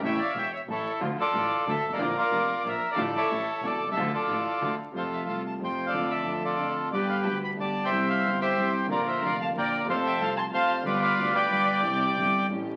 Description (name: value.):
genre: tango.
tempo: 183 BPM.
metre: 3/4.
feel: rubato.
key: D harmonic minor, F major from 4.9 s.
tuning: A4 = 440 Hz.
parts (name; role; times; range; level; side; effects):
bandoneon; melody; 0.0-12.5 s; E4 to C6; -29 LUFS; equal; none.
dark studio violin section; second line; 0.0-4.8, 8.4-12.5 s; A4 to A5; -36 LUFS; equal; none.
warm concert grand piano; accompaniment; 0.0-12.8 s; E1 to G4; -34 LUFS; equal; none.
clear double bass; bass; 0.0-12.8 s; E1 to F2; -42 LUFS; equal; none.
dark symphonic string section; stabs; 1.0-12.8 s; A3 to Bb4; -42 LUFS; equal; none.
room: wet studio reverb, RT60 0.7 s.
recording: very old 78 rpm record, vinyl crackle.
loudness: -27 LUFS.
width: mono.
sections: 0.0-4.9 A section; 4.9-12.8 B section.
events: none.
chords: 0.0 A; 1.0 Dm; 2.0 Bb; 3.0 Dm/A; 3.3 A; 4.0 Dm; 4.9 F; 5.9 Dm/F; 6.9 G; 7.9 C; 8.9 Bb; 9.9 F; 10.9 G7; 11.8 C.